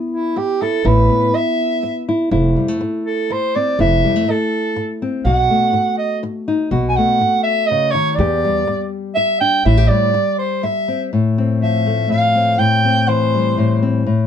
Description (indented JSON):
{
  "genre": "acoustic folk duo or small band",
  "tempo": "123 BPM",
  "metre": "3/4",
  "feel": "straight",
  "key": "A minor",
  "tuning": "A4 = 440 Hz",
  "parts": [
    { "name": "nylon-string guitar", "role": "accompaniment", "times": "0.0-14.3 s", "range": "E2 to G4", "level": "-18 LUFS", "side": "left 3 dB", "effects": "none" },
    { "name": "mellow soprano saxophone", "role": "melody", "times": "0.1-13.8 s", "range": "E4 to G#5", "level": "-17 LUFS", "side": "right 2 dB", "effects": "none" },
    { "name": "upright bass", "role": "bass", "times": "0.8-9.9 s", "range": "F1 to E2", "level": "-17 LUFS", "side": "right 1 dB", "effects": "none" }
  ],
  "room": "light reverb",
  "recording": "dark, warm production",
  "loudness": "-14 LUFS",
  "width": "side -8 dB against mid",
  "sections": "0.0-11.1 A section; 11.1-14.3 B section",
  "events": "soprano saxophone solo 0.0-11.1",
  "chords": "0.0 Asus2; 2.3 Fmaj7; 5.2 B7; 8.2 Em7; 9.7 Am7; 11.1 F/A; 12.6 C/A"
}